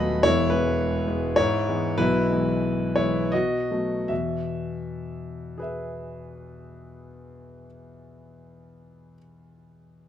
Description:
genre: classical, romantic character piece for solo piano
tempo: 75-108 BPM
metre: 3/4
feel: rubato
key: E major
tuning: A4 = 440 Hz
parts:
  - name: warm concert grand piano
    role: solo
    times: 0.0-10.1 s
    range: D#1 to B5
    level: -23 LUFS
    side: left 1 dB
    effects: none
room: moderate recital hall reverb, RT60 1.4 s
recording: close, detailed microphones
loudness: -22 LUFS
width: side -10 dB against mid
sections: 0.0-4.1 A section; 4.1-8.6 B section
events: slowing down 0.0-4.1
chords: 0.2 E; 1.4 E/G#; 2.0 E/B; 3.3 B7; 4.1 E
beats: | 0.24 0.80 1.38 | 1.99 2.63 3.33 | 4.10 4.84 5.58 | 6.34 7.09 7.84

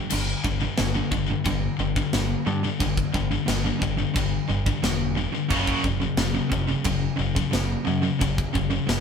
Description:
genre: heavy metal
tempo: 89 BPM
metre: 4/4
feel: straight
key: unclear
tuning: A4 = 439 Hz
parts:
  - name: distorted electric guitar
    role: riff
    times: 0.0-9.0 s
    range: F#2 to F#3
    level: -27 LUFS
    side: equal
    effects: overdrive
  - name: heavy high-gain guitar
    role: riff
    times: 0.0-9.0 s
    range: F#2 to F#3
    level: -29 LUFS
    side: left 10 dB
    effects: distortion
  - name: picked electric bass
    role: bass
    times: 0.1-9.0 s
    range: E1 to G2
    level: -28 LUFS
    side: equal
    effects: none
  - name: tight metal drum kit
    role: drums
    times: 0.1-9.0 s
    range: china cymbal, crash cymbal, kick drum, snare drum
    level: -27 LUFS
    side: equal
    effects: none
room: moderate stone room reverb, RT60 1.0 s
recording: band playing live in one room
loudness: -22 LUFS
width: side -6 dB against mid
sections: 0.0-9.0 A section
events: none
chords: 0.0 G5; 5.5 F#5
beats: | 0.11 0.78 1.46 2.13 | 2.81 3.48 4.16 4.83 | 5.51 6.19 6.86 7.54 | 8.22 8.89

